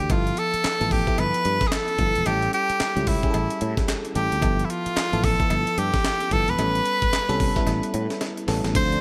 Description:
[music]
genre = R&B, new jack swing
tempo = 111 BPM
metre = 4/4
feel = swing 61% on 16ths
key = unclear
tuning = A4 = 439 Hz
[part]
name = breathy tenor saxophone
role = melody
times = 0.0-9.0 s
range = E4 to C5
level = -26 LUFS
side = equal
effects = none
[part]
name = FM electric piano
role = accompaniment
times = 0.0-9.0 s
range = E3 to A4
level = -30 LUFS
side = equal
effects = chorus
[part]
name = sustaining fretless electric bass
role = bass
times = 0.0-9.0 s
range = E1 to A2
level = -29 LUFS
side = equal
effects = none
[part]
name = breakbeat sampler-style drum kit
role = drums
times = 0.1-9.0 s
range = crash cymbal, handclaps, hi-hat, kick drum, snare drum, tambourine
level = -28 LUFS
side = equal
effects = gated reverb
[part]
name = cowbell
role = percussion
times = 0.1-8.4 s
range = none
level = -40 LUFS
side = equal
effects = none
[part]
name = phased analog pad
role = sustained chords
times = 8.9-9.0 s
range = A4 to C6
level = -40 LUFS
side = equal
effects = phaser, chorus
[sound]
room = light reverb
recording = bright 1980s-style digital production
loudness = -23 LUFS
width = mono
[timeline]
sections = 0.1-8.7 A section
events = drum fill 7.7-8.7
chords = 0.1 G13; 2.3 A7; 4.4 G13; 6.6 A9

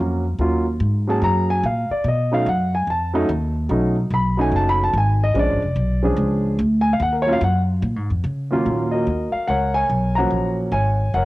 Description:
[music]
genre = jazz piano trio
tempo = 145 BPM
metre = 4/4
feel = swing 65% on 8ths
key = Eb minor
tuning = A4 = 437 Hz
[part]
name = dark concert grand piano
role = melody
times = 0.0-11.2 s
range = Eb2 to B5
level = -20 LUFS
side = equal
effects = cassette tape
[part]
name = upright bass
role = bass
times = 0.0-11.2 s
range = F1 to Db3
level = -20 LUFS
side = equal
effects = none
[sound]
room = light reverb, studio reverb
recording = home recording on cassette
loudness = -17 LUFS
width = side -18 dB against mid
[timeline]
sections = 0.0-8.7 A section; 8.7-11.2 B section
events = grand piano solo 0.0-8.7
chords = 0.0 Ebm7; 2.1 B7; 5.4 Bb7#9; 7.0 Ebm7; 7.8 Bbm7; 8.7 Ebm7

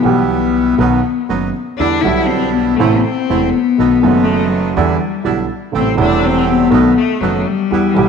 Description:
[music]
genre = tango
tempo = 122 BPM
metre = 4/4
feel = rubato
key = E minor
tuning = A4 = 438 Hz
[part]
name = warm cello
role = second line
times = 0.0-8.1 s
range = F#3 to E4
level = -15 LUFS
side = left 9 dB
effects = none
[part]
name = dark upright piano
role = accompaniment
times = 0.0-8.1 s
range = E1 to G4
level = -16 LUFS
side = right 7 dB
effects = none
[part]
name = bandoneon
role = stabs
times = 0.0-8.1 s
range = F#3 to G4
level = -22 LUFS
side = right 8 dB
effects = none
[part]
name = upright bass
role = bass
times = 0.0-8.1 s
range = E1 to E2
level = -22 LUFS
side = equal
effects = none
[sound]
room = moderate echo chamber reverb, RT60 2.1 s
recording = 1960s-style stereo with parts hard left and right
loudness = -12 LUFS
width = side -6 dB against mid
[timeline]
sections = 0.0-8.1 A section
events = cello solo 0.0-8.1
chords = 0.0 Em/B; 0.8 B; 1.8 Em7; 2.8 Am; 3.8 B7; 4.8 Em7; 5.7 Am7; 6.7 B7

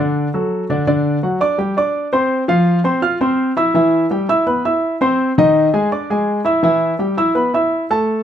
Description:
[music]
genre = jazz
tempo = 167 BPM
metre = 4/4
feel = straight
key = unclear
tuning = A4 = 440 Hz
[part]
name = warm baby grand piano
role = solo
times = 0.0-8.2 s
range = D3 to F6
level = -14 LUFS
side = equal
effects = none
[sound]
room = moderate club reverb, RT60 0.5 s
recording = none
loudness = -14 LUFS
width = side -9 dB against mid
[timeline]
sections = 0.9-8.2 A section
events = none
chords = 0.1 D; 0.9 G5; 2.3 F5; 3.8 Em; 5.2 Ab/Eb; 5.9 E7/G#; 6.6 Emadd11

